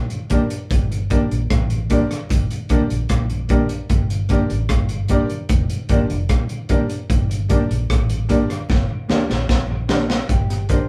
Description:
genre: roots reggae.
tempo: 75 BPM.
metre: 4/4.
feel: straight.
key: G minor.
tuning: A4 = 440 Hz.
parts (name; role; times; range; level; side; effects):
mellow tonewheel organ; accompaniment; 0.1-10.8 s; G2 to D4; -32 LUFS; equal; none.
crunchy breakbeat drum kit; drums; 0.1-10.9 s; hi-hat, kick drum, rim click, snare drum; -22 LUFS; equal; none.
mellow electric guitar; accompaniment; 0.3-10.9 s; Bb3 to C5; -28 LUFS; equal; dub echo.
warm upright piano; stabs; 0.3-10.9 s; D4 to D5; -26 LUFS; equal; none.
congas; percussion; 0.3-10.9 s; none; -35 LUFS; equal; none.
vintage muted fingered electric bass; bass; 0.7-10.8 s; F1 to D2; -25 LUFS; equal; none.
room: wet studio reverb, RT60 0.5 s.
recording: band playing live in one room.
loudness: -19 LUFS.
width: mono.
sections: 0.0-10.3 A section.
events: drum fill 8.7-10.3.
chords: 0.0 Gm.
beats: | 0.70 1.50 2.30 3.10 | 3.90 4.70 5.50 6.30 | 7.09 7.89 8.69 9.49 | 10.29.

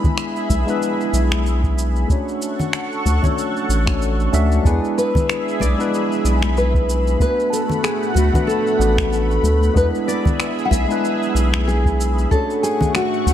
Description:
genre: sunset chillout.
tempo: 94 BPM.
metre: 4/4.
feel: swing 57% on 16ths.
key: unclear.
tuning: A4 = 440 Hz.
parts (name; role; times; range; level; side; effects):
tine electric piano; accompaniment; 0.0-13.3 s; G#3 to E5; -23 LUFS; equal; overdrive, auto-pan, digital delay.
lush unison pad; sustained chords; 0.0-13.3 s; A3 to C#6; -26 LUFS; equal; chorus, phaser.
electronic kick drum; drums; 0.0-12.9 s; none; -19 LUFS; equal; small room ambience.
electronic shaker and finger snaps; drums; 0.0-13.3 s; none; -27 LUFS; left 1 dB; small room ambience.
congas; percussion; 0.1-13.3 s; none; -26 LUFS; left 1 dB; none.
round analog bass; bass; 0.5-13.3 s; A1 to E2; -18 LUFS; equal; none.
nylon-string guitar; melody; 4.7-13.3 s; F#4 to F#5; -21 LUFS; left 1 dB; digital delay.
room: light reverb, digital ambience.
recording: none.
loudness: -16 LUFS.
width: side -10 dB against mid.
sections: 0.0-13.3 A section.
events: none.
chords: 0.0 E7; 2.1 Dmaj7; 4.6 E7; 7.2 Bm7; 9.8 E7; 12.3 Dmaj7.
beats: 0.18 0.82 1.46 | 2.09 2.73 3.37 4.01 | 4.65 5.29 5.92 6.56 | 7.20 7.84 8.48 9.12 | 9.75 10.39 11.03 11.67 | 12.31 12.95.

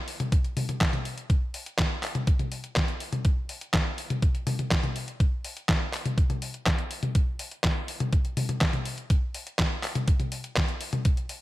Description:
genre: italo disco.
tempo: 123 BPM.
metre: 4/4.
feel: straight.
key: none.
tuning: none.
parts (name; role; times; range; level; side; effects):
detuned 8-bit digital drum machine; drums; 0.1-11.4 s; handclaps, hi-hat, snare drum, toms; -28 LUFS; left 1 dB; none.
electronic kick drum; drums; 0.3-11.2 s; none; -25 LUFS; equal; none.
room: light reverb.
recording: none.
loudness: -25 LUFS.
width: side -17 dB against mid.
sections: 0.0-11.4 A section.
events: none.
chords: none.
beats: 0.32 0.81 | 1.30 1.78 2.27 2.76 | 3.25 3.74 4.22 4.71 | 5.20 5.69 6.17 6.66 | 7.15 7.64 8.13 8.61 | 9.10 9.59 10.08 10.56 | 11.05.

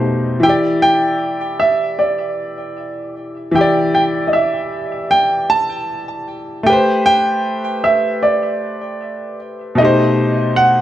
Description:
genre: R&B.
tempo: 77 BPM.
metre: 4/4.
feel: swing 58% on 16ths.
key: E minor.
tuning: A4 = 441 Hz.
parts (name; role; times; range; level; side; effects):
clear baby grand piano; accompaniment; 0.0-10.8 s; B2 to D5; -18 LUFS; left 1 dB; none.
warm baby grand piano; melody; 0.4-10.8 s; D5 to A5; -16 LUFS; right 1 dB; digital delay.
room: light reverb, studio reverb.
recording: none.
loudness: -13 LUFS.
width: side -12 dB against mid.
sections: 0.4-10.8 A section.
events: none.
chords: 0.4 Em7; 6.7 Am9; 9.8 B7b9b13.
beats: | 0.44 1.22 2.00 2.78 | 3.56 4.34 5.12 5.90 | 6.68 7.46 8.23 9.01 | 9.79 10.57.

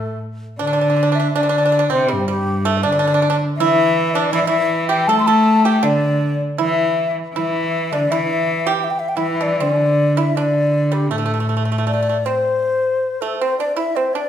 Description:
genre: chinese traditional, Chinese chamber ensemble.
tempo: 80 BPM.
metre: 2/4.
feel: rubato.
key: A yu mode.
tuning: A4 = 440 Hz.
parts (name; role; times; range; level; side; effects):
bright xiao; melody; 0.0-14.3 s; G4 to C6; -19 LUFS; left 3 dB; none.
pipa; second line; 0.0-14.3 s; G3 to A4; -22 LUFS; right 6 dB; none.
rich cello; second line; 0.0-12.3 s; G2 to A3; -19 LUFS; equal; none.
room: wet recital hall reverb, RT60 1.4 s.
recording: minimal, uncompressed stereo recording.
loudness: -15 LUFS.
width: side -9 dB against mid.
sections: 0.6-12.6 A section; 12.6-14.3 B section.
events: none.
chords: none.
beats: | 0.59 1.35 | 2.10 2.84 | 3.58 4.32 | 5.07 5.83 | 6.60 7.36 | 8.11 8.85 | 9.60 10.35 | 11.10 11.87 | 12.64 13.40 | 14.15.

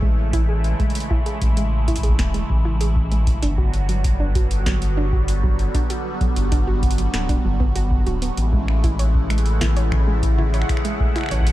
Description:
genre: IDM.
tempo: 97 BPM.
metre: 4/4.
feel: straight.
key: A major.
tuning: A4 = 440 Hz.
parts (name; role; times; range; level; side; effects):
phased analog pad; sustained chords; 0.0-11.5 s; C#3 to F#4; -27 LUFS; equal; phaser, chorus, vintage 12-bit sampler grit.
soft round pluck; arpeggios; 0.0-11.4 s; F#3 to C#5; -30 LUFS; right 4 dB; chorus, dub echo.
round analog bass; bass; 0.0-11.5 s; D1 to A1; -20 LUFS; equal; tube saturation.
electronic kick drum; drums; 0.0-11.5 s; none; -21 LUFS; equal; small room reverb.
booming analog drum machine; drums; 0.3-11.5 s; finger snaps, hi-hat, snare drum, toms; -30 LUFS; equal; small room reverb.
bubbling stepped-filter texture; texture; 8.4-11.5 s; F#5; -35 LUFS; right 8 dB; chorus, built-in reverb, sidechain pumping.
room: digital ambience.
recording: dark, warm production.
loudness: -17 LUFS.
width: side -15 dB against mid.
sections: 0.0-11.5 A section.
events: none.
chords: 0.0 Amaj7; 3.4 Gmaj7; 8.4 Amaj7.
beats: 0.33 | 0.95 1.57 2.19 2.81 | 3.43 4.04 4.66 5.28 | 5.90 6.52 7.14 7.76 | 8.37 8.99 9.61 10.23 | 10.85 11.47.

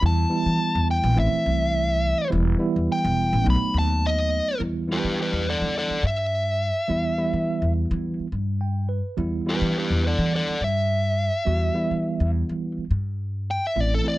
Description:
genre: straight-eighth soul blues.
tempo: 105 BPM.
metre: 4/4.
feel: swing 54% on 16ths.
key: E minor.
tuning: A4 = 441 Hz.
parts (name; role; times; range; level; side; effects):
smooth overdriven lead guitar; melody; 0.0-14.2 s; G4 to B5; -25 LUFS; left 1 dB; none.
mellow tine electric piano; accompaniment; 0.0-14.2 s; E3 to G5; -26 LUFS; right 3 dB; medium stereo tremolo.
upright bass; bass; 0.0-14.0 s; E1 to E3; -24 LUFS; equal; none.
room: light reverb.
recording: nothing above 10.6 kHz.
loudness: -21 LUFS.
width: side -17 dB against mid.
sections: 0.0-4.6 A section; 4.6-14.2 B section.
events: lead electric guitar solo 0.0-4.6; tine electric piano fill 8.3-9.2.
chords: 0.0 Em; 1.2 Am; 2.3 Em; 3.5 B7; 4.6 Em.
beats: | 0.03 0.60 1.17 1.74 | 2.31 2.89 3.46 4.03 | 4.60 5.17 5.75 6.32 | 6.89 7.46 8.04 8.61 | 9.18 9.75 10.33 10.90 | 11.47 12.04 12.62 13.19 | 13.76.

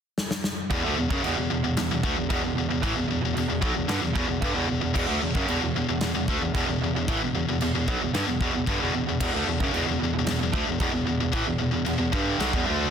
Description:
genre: heavy metal.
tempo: 113 BPM.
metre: 4/4.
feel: straight.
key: E minor.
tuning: A4 = 441 Hz.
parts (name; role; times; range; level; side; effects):
big rock drum kit; drums; 0.2-12.7 s; china cymbal, crash cymbal, kick drum, snare drum; -30 LUFS; equal; none.
distorted electric guitar; riff; 0.7-12.9 s; E2 to D4; -28 LUFS; right 10 dB; overdrive.
heavy high-gain guitar; riff; 0.7-12.9 s; E2 to D4; -27 LUFS; left 9 dB; distortion.
mellow bass clarinet; bass; 0.7-12.9 s; B1 to A2; -30 LUFS; equal; none.
room: small room ambience.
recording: dense, heavily limited modern master.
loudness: -23 LUFS.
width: side -8 dB against mid.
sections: 0.7-12.9 A section.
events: drum fill 0.2-0.7.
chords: 0.0 N.C.; 0.7 Em.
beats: 0.17 | 0.70 1.23 1.76 2.29 | 2.82 3.35 3.88 4.42 | 4.95 5.48 6.01 6.54 | 7.08 7.61 8.14 8.67 | 9.21 9.74 10.27 10.81 | 11.34 11.87 12.41.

